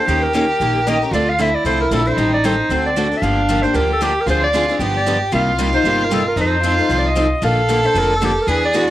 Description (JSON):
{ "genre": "acoustic string swing (jazz manouche)", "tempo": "229 BPM", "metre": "4/4", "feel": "swing 56% on 8ths", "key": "D minor, G minor from 3.2 s", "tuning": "A4 = 440 Hz", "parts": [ { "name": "clear clarinet", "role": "melody", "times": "0.0-8.9 s", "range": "G4 to F5", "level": "-19 LUFS", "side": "equal", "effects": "cassette tape" }, { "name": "warm violin", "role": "second line", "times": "0.0-8.9 s", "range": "C4 to A4", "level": "-20 LUFS", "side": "right 1 dB", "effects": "none" }, { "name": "picked steel-string acoustic guitar", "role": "accompaniment", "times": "0.0-8.9 s", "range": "C3 to Bb4", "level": "-23 LUFS", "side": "left 5 dB", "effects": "none" }, { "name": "picked steel-string acoustic guitar", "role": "accompaniment", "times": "0.1-8.8 s", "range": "C3 to B4", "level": "-24 LUFS", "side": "right 4 dB", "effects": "none" }, { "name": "upright bass", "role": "bass", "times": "0.1-8.9 s", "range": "F1 to F2", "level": "-22 LUFS", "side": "equal", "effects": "none" } ], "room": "moderate studio reverb, RT60 0.6 s", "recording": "home recording on cassette", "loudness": "-14 LUFS", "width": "side -14 dB against mid", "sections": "0.0-3.2 A section; 3.2-8.9 B section", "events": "none", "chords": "0.1 Eb7; 1.1 Dm7; 2.2 Am7b5; 2.7 D7; 3.2 Gm7; 4.3 Dm7b5; 4.8 G7; 5.3 Cm7; 6.4 F7; 7.4 Bbmaj7" }